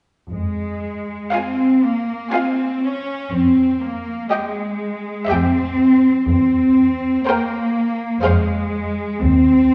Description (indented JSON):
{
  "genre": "classical, slow romantic movement for symphony orchestra",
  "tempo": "61 BPM",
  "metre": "3/4",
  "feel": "uneven beats, rubato",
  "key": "F minor",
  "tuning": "A4 = 440 Hz",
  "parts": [
    { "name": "warm studio cello section", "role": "bass", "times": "0.3-9.7 s", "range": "Ab3 to Db4", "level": "-19 LUFS", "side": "equal", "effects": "none" },
    { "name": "warm studio double bass section", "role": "bass", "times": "0.3-9.7 s", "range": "Eb2 to F2", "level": "-25 LUFS", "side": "equal", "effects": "none" },
    { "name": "warm studio violin section", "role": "melody", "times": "1.3-9.0 s", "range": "F5 to Ab5", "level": "-30 LUFS", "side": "equal", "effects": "none" },
    { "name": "warm studio violin section", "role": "second line", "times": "1.3-9.0 s", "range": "C5 to F5", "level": "-28 LUFS", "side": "equal", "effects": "none" },
    { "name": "dark studio viola section", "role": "accompaniment", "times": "1.3-9.0 s", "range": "F4 to Bb4", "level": "-29 LUFS", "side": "equal", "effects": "none" }
  ],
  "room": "wet recital hall reverb, RT60 1.7 s",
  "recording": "heard from further back in the room, nothing above 10.5 kHz",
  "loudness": "-18 LUFS",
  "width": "mono",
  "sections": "0.3-9.7 A section",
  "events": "none",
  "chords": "0.3 Fm; 3.3 Eb/F; 5.3 C/F; 6.3 C7/E; 8.2 Fm; 9.2 Cm/Eb"
}